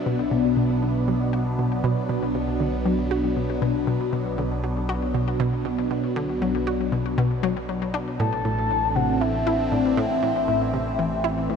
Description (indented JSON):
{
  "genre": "ambient, sequencer-driven space music",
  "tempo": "118 BPM",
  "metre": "4/4",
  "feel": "straight",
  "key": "unclear",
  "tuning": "A4 = 440 Hz",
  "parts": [
    { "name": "phased analog pad", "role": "sustained chords", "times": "0.0-11.6 s", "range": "A2 to D4", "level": "-25 LUFS", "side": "left 1 dB", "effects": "phaser, chorus" },
    { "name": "analog pluck", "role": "riff", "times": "0.1-11.6 s", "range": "A2 to F#4", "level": "-27 LUFS", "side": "equal", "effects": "chorus, ping-pong delay" },
    { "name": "fat analog bass", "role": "bass", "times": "0.1-11.6 s", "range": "A1 to B1", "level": "-30 LUFS", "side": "equal", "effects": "tube saturation" },
    { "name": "soft octave-layered synth lead", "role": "melody", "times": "8.2-11.5 s", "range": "D5 to A5", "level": "-25 LUFS", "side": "left 2 dB", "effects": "chorus, phaser, ping-pong delay" }
  ],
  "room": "moderate huge ambient reverb, RT60 8.6 s",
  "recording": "none",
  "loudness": "-21 LUFS",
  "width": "side -6 dB against mid",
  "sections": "0.1-11.6 A section",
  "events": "filter sweep on synth arpeggio sound 0.1-11.6",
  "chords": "0.1 Bm; 8.2 Am"
}